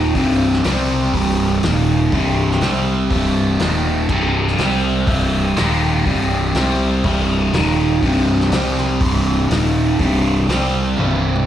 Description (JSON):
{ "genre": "blues rock power trio and southern rock", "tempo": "122 BPM", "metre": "4/4", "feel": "straight", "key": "C minor", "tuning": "A4 = 440 Hz", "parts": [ { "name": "overdriven electric guitar", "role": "riff", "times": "0.0-11.5 s", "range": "C2 to C4", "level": "-17 LUFS", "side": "equal", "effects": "phaser, slapback echo" }, { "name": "fuzz picked electric bass", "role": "bass", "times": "0.0-11.4 s", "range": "C1 to C2", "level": "-20 LUFS", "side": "equal", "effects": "overdrive" }, { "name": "vintage drum kit", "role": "drums", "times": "0.1-11.5 s", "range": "crash cymbal, hi-hat, kick drum, snare drum, toms", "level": "-24 LUFS", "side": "equal", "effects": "none" } ], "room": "studio reverb", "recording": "live gig heard through the venue's PA, club ambience", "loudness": "-14 LUFS", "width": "side -11 dB against mid", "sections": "0.0-11.5 A section", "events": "drum fill 11.0-11.5", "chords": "0.2 C5; 1.6 Eb5; 2.1 C5; 3.6 Eb5; 4.1 C5; 5.6 Eb5; 6.1 C5; 7.5 Eb5; 8.0 C5; 9.5 Eb5; 10.0 C5" }